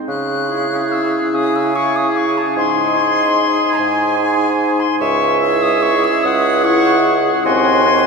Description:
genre	classical, slow romantic movement for wind quintet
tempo	49 BPM (dotted quarters)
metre	6/8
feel	rubato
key	C# minor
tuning	A4 = 440 Hz
part	clear clarinet	accompaniment	0.0-8.1 s	E5 to G#5	-21 LUFS	right 4 dB	none
part	silver concert flute	melody	0.1-8.1 s	G#5 to F#6	-18 LUFS	left 5 dB	none
part	warm bassoon	bass	0.1-8.1 s	C#2 to C#3	-18 LUFS	right 3 dB	none
part	clear oboe	second line	0.5-8.1 s	Gb4 to G#4	-23 LUFS	left 2 dB	none
part	warm French horn	accompaniment	0.5-8.1 s	C4 to E4	-20 LUFS	left 1 dB	none
room	wet cathedral reverb, RT60 6.6 s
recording	none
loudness	-13 LUFS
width	side -4 dB against mid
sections	0.1-8.1 A section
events	none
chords	0.1 C#m; 2.6 G#; 5.0 C#m; 7.5 Cdim/Eb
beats	| 0.08 1.33 | 2.57 3.79 | 5.01 6.25 | 7.45

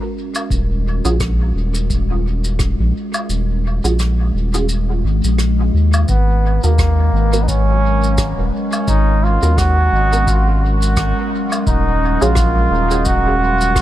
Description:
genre	ambient dub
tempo	86 BPM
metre	4/4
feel	swing 57% on 16ths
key	unclear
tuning	A4 = 440 Hz
part	warbly tape-like pad	sustained chords	0.0-13.8 s	F#3 to A#4	-23 LUFS	equal	chorus, built-in reverb
part	shaker, woodblock and rim click	drums	0.3-13.8 s	none	-26 LUFS	equal	dub echo
part	round analog bass	bass	0.5-13.8 s	D#1 to D#2	-16 LUFS	equal	none
part	electronic kick drum	drums	0.5-13.8 s	none	-21 LUFS	equal	overdrive
part	filtered dub chord stab	stabs	1.0-13.0 s	B3 to A#4	-26 LUFS	right 2 dB	ensemble chorus, dub echo
part	trombone with straight mute	melody	6.1-13.8 s	A#3 to F#4	-19 LUFS	right 1 dB	dub echo
room	little or no reverb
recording	none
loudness	-14 LUFS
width	side -14 dB against mid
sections	0.0-6.1 A section; 6.1-13.8 B section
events	filter sweep on synth stab 0.0-6.1; kick drops out 3.3-6.1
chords	0.0 G#7sus2; 0.5 D#m11; 6.1 G#7sus2; 11.7 D#m11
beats	| 0.50 1.20 1.90 2.60 | 3.29 3.99 4.69 5.39 | 6.08 6.78 7.48 8.18 | 8.88 9.57 10.27 10.97 | 11.67 12.37 13.06 13.76

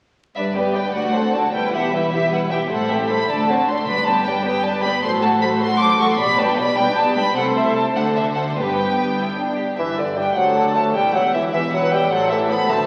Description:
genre	quick classical-period movement for symphony orchestra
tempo	103 BPM (dotted quarters)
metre	6/8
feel	straight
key	G major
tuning	A4 = 442 Hz
part	dark studio violin section	melody	0.4-12.9 s	F#4 to D6	-24 LUFS	equal	none
part	warm studio violin section	second line	0.4-12.9 s	D4 to B5	-23 LUFS	equal	none
part	warm studio viola section	accompaniment	0.4-12.9 s	F#3 to E5	-29 LUFS	equal	none
part	dark studio double bass section	bass	0.4-12.9 s	E1 to D2	-34 LUFS	equal	none
part	warm studio cello section	bass	0.4-12.9 s	D2 to D3	-29 LUFS	equal	none
part	warm bassoon	accompaniment	9.8-12.9 s	D3 to B3	-23 LUFS	equal	none
room	wet scoring stage reverb, RT60 2.0 s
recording	very old 78 rpm record, vinyl crackle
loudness	-19 LUFS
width	mono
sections	0.4-9.8 A section; 9.8-12.9 A section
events	none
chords	0.4 G; 1.0 D7; 1.5 Em; 2.7 Am7; 3.3 D7; 3.9 G; 5.0 F#dim/A; 6.2 G/B; 7.4 Am/C; 8.0 D5; 8.6 G; 10.4 D7; 11.0 Em; 12.1 Am7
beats	| 0.37 0.96 | 1.54 2.13 | 2.71 3.30 | 3.88 4.46 | 5.04 5.62 | 6.20 6.79 | 7.37 7.96 | 8.57 9.18 | 9.78 10.37 | 10.95 11.54 | 12.12 12.70

